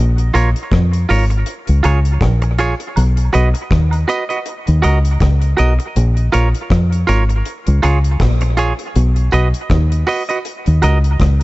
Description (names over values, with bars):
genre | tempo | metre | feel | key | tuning
dub reggae | 80 BPM | 4/4 | swing 57% on 16ths | Eb minor | A4 = 441 Hz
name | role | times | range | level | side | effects
deep dub fingered electric bass | bass | 0.0-11.4 s | Ab1 to F2 | -13 LUFS | equal | none
deep reggae drum kit | drums | 0.2-11.4 s | hi-hat, kick drum, rim click | -22 LUFS | equal | none
semi-hollow electric guitar | accompaniment | 0.3-11.0 s | F4 to D#5 | -20 LUFS | right 3 dB | dub echo
tambourine and woodblock | percussion | 0.3-11.0 s | none | -30 LUFS | right 3 dB | dub echo
room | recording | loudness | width
small room ambience | echo-heavy mix, nothing above 7.9 kHz | -12 LUFS | side -20 dB against mid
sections
0.0-11.4 A section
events
none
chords
0.0 Bbm; 1.5 Db; 3.0 B; 4.5 Ebm; 6.0 Bbm; 7.5 Db; 9.0 B; 10.4 Ebm